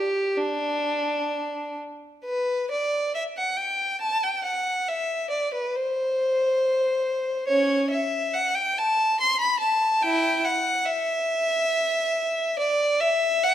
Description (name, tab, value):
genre	classical, baroque-style suite movement for unaccompanied violin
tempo	69 BPM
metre	3/4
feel	rubato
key	unclear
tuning	A4 = 440 Hz
part	warm violin	solo	0.0-13.5 s	C#4 to C6	-22 LUFS	equal	none
room	wet recital hall reverb, RT60 1.4 s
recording	none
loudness	-22 LUFS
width	side -11 dB against mid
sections	0.0-2.2 A section; 2.2-13.5 A section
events	none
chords	none